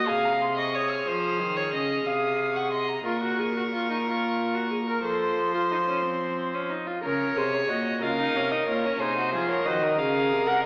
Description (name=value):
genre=classical, baroque-style fugue for string quartet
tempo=61 BPM (dotted quarters)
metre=12/8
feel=straight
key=Bb minor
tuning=A4 = 440 Hz
part: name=dark violin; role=melody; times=0.0-10.6 s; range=Bb4 to F6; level=-32 LUFS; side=equal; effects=none
part: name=rich violin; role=second line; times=0.0-10.7 s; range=Gb4 to Gb5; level=-32 LUFS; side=equal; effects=none
part: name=warm viola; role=accompaniment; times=0.0-10.7 s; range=C4 to Bb4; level=-31 LUFS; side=equal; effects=none
part: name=dark cello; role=bass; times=0.0-10.7 s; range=Bb2 to F3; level=-34 LUFS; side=equal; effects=none
room=wet recital hall reverb, RT60 1.9 s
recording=heard from further back in the room, AM radio sound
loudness=-26 LUFS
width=mono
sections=0.0-7.0 A section; 7.0-10.7 B section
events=none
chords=0.0 Cm; 3.1 Fsus4/Bb; 5.1 F; 7.0 Bbm